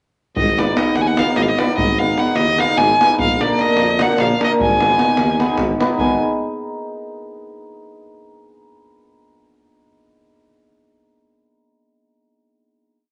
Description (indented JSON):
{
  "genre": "balkan folk, Balkan wedding band",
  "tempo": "300 BPM (eighths)",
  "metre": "7/8",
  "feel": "straight",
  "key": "Ab dorian sharp4",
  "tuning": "A4 = 444 Hz",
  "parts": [
    { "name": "rich violin", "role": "melody", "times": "0.4-6.2 s", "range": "D5 to Ab5", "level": "-20 LUFS", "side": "equal", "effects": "none" },
    { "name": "warm tuba", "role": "bass", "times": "0.4-6.2 s", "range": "Ab1 to F2", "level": "-26 LUFS", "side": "equal", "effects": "none" },
    { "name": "davul", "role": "percussion", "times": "0.4-6.2 s", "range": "none", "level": "-25 LUFS", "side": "equal", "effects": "none" },
    { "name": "cimbalom", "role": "accompaniment", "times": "0.6-6.2 s", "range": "Bb3 to Cb5", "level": "-22 LUFS", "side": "equal", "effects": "none" }
  ],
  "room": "moderate studio reverb, RT60 0.9 s",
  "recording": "nothing above 10.9 kHz",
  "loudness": "-17 LUFS",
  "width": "mono",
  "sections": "0.4-6.0 A section; 6.0-7.4 final chord",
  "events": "none",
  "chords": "0.4 Abm; 3.2 Bb; 4.6 Abm"
}